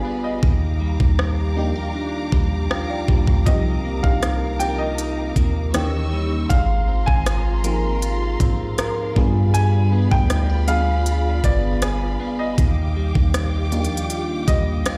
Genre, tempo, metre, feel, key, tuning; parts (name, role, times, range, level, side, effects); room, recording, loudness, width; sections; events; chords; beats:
contemporary R&B; 79 BPM; 4/4; straight; A4 = 440 Hz
clear baby grand piano; melody; 0.0-15.0 s; D5 to Ab5; -30 LUFS; equal; delay
FM electric piano with soft pad layer; accompaniment; 0.0-15.0 s; Fb3 to G5; -30 LUFS; equal; chorus, phaser
dark studio string section; sustained chords; 0.0-15.0 s; F4 to Fb6; -34 LUFS; equal; sidechain pumping
direct-recorded clean electric guitar; arpeggios; 0.0-15.0 s; C3 to Bb4; -30 LUFS; equal; analog chorus, delay
long sustained 808-style bass; bass; 0.4-14.8 s; G1 to Ab2; -23 LUFS; equal
trap drum kit; drums; 0.4-15.0 s; hi-hat, kick drum, rim click; -22 LUFS; equal
light reverb, digital ambience; played on a big sound system in a bare room, large studio reverb; -20 LUFS; mono
0.0-15.0 A section
break 0.0-3.5; FM electric piano fill 2.3-3.5
0.4 Ebmaj9; 3.5 Cm11; 5.7 Eb7b9; 6.5 Ab69; 9.2 G7b9; 12.6 Ebmaj9
| 0.43 1.19 1.95 2.71 | 3.47 4.22 4.99 5.74 | 6.50 7.26 8.02 8.78 | 9.54 10.30 11.06 11.82 | 12.58 13.34 14.10 14.86